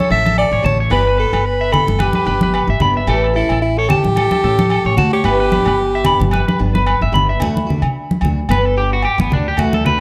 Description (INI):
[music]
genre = highlife guitar band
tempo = 111 BPM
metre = 4/4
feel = swing 55% on 16ths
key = unclear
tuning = A4 = 440 Hz
[part]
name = breathy alto saxophone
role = melody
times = 0.0-6.8 s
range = E4 to E5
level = -20 LUFS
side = equal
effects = none
[part]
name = electric guitar at the edge of break-up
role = arpeggios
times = 0.0-10.0 s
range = B3 to B5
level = -22 LUFS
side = equal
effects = analog delay
[part]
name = congas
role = percussion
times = 0.0-10.0 s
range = none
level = -22 LUFS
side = equal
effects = none
[part]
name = picked steel-string acoustic guitar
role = accompaniment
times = 0.1-10.0 s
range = E3 to G4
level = -26 LUFS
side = equal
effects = none
[part]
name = upright bass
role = bass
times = 0.1-10.0 s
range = G1 to D3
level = -21 LUFS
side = equal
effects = none
[part]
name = agogo bells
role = percussion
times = 0.4-9.7 s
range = none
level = -28 LUFS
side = equal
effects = none
[sound]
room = light reverb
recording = none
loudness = -15 LUFS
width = mono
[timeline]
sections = 0.0-7.4 A section; 7.4-10.0 B section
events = clean electric guitar solo 7.4-10.0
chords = 0.0 A7; 0.9 G6; 3.1 A7; 5.2 G6; 7.4 D; 8.5 G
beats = 0.38 | 0.92 1.46 2.00 2.54 | 3.08 3.62 4.16 4.71 | 5.25 5.79 6.33 6.87 | 7.41 7.95 8.49 9.03 | 9.58